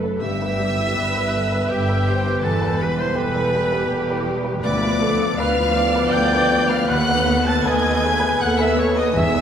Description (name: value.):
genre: classical, romantic movement for piano and orchestra.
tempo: 81 BPM.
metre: 3/4.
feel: rubato.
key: E minor.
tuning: A4 = 439 Hz.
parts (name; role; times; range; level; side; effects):
warm grand piano; melody; 0.0-9.4 s; D2 to B4; -23 LUFS; left 1 dB; none.
rich studio viola section; accompaniment; 0.0-9.4 s; G4 to E5; -26 LUFS; right 2 dB; none.
dark French horn section; sustained chords; 0.0-9.4 s; F3 to D#4; -26 LUFS; left 2 dB; none.
rich chamber double bass section; bass; 0.0-9.4 s; E1 to D#2; -28 LUFS; right 2 dB; none.
rich symphonic cello section; bass; 0.0-9.4 s; D2 to G2; -26 LUFS; right 1 dB; none.
rich chamber violin section; melody; 0.2-9.4 s; G5 to A6; -28 LUFS; left 2 dB; none.
clear chamber violin section; second line; 0.2-9.4 s; G4 to A5; -29 LUFS; left 1 dB; none.
clear oboe; second line; 0.2-9.4 s; G4 to A5; -27 LUFS; equal; none.
mellow hollow silver concert flute; second line; 0.2-9.4 s; G4 to A5; -27 LUFS; equal; none.
timpani; percussion; 9.2-9.4 s; E2; -22 LUFS; right 1 dB; none.
room: wet church reverb, RT60 2.6 s.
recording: recorded in a church or concert hall.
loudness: -17 LUFS.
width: side -8 dB against mid.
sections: 0.0-9.4 A section.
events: none.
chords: 0.2 Em/G; 2.4 Em; 4.6 Bdim/D; 6.9 B7/D#.